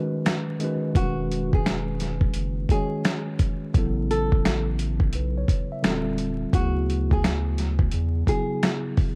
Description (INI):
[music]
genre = lo-fi hip hop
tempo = 86 BPM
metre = 4/4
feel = swing 65% on 16ths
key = E major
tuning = A4 = 441 Hz
[part]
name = mellow tine electric piano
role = accompaniment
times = 0.0-9.2 s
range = C#3 to E5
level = -31 LUFS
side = equal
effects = none
[part]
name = dusty soul sampler-style drum kit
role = drums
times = 0.3-9.2 s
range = finger snaps, hi-hat, kick drum, snare drum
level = -26 LUFS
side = equal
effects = overdrive
[part]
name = nylon-string guitar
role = melody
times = 1.0-8.8 s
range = F#4 to A4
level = -32 LUFS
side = equal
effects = none
[part]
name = saturated sub bass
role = bass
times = 1.0-8.2 s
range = D#1 to E2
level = -29 LUFS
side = equal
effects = none
[sound]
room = little or no reverb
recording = vinyl crackle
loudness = -24 LUFS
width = mono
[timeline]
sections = 0.0-9.2 A section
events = break 0.0-1.0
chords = 0.0 Badd9; 1.0 Emaj9; 3.7 Aadd9; 5.8 D#69; 6.5 D69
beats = 0.25 | 0.95 1.65 2.35 3.04 | 3.74 4.44 5.14 5.84 | 6.53 7.23 7.93 8.63